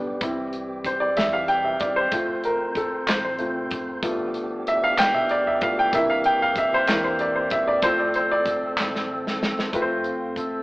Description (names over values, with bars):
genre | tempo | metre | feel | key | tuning
slow gospel | 63 BPM (dotted quarters) | 6/8 | straight | F major | A4 = 440 Hz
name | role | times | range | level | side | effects
warm upright piano | accompaniment | 0.0-10.6 s | G3 to G5 | -22 LUFS | equal | none
tonewheel organ | sustained chords | 0.0-10.6 s | D3 to C5 | -30 LUFS | equal | fast rotary speaker, overdrive
hollow-body short-scale fingered electric bass | bass | 0.0-10.6 s | F1 to E2 | -44 LUFS | equal | none
modern studio drum kit | drums | 0.2-10.5 s | hi-hat, kick drum, snare drum | -28 LUFS | equal | none
group handclap | percussion | 3.1-9.1 s | none | -26 LUFS | equal | none
room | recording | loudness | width
moderate stone room reverb, RT60 1.0 s | band playing live in one room, AM radio sound | -20 LUFS | side -22 dB against mid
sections
0.0-9.7 A section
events
upright piano solo 0.0-9.7; drum fill 8.8-9.7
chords
0.2 C; 2.1 F; 4.0 G7; 5.9 C7; 7.8 F